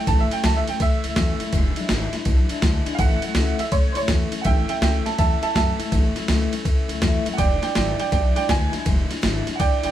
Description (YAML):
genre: rockabilly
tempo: 164 BPM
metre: 4/4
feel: swing 65% on 8ths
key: A major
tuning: A4 = 440 Hz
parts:
  - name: bright upright piano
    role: melody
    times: 0.0-9.9 s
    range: C5 to A5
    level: -25 LUFS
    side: right 6 dB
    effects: none
  - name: picked steel-string acoustic guitar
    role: accompaniment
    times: 0.0-9.9 s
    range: E2 to E4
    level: -27 LUFS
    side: left 6 dB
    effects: none
  - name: upright bass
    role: bass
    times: 0.1-9.9 s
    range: E1 to F#2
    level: -25 LUFS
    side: equal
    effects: none
  - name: boom bap sampler-style drum kit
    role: drums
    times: 0.1-9.9 s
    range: kick drum, ride cymbal, snare drum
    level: -22 LUFS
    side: equal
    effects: none
room: light reverb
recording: band playing live in one room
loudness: -19 LUFS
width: side -12 dB against mid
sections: 0.0-4.5 A section; 4.5-9.9 A section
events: upright piano solo 0.0-9.9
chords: 0.0 A; 1.5 E7; 3.0 A; 7.4 E7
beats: | 0.07 0.44 0.80 1.17 | 1.53 1.90 2.26 2.63 | 3.00 3.36 3.73 4.09 | 4.46 4.82 5.19 5.56 | 5.92 6.29 6.66 7.02 | 7.39 7.76 8.12 8.49 | 8.86 9.23 9.60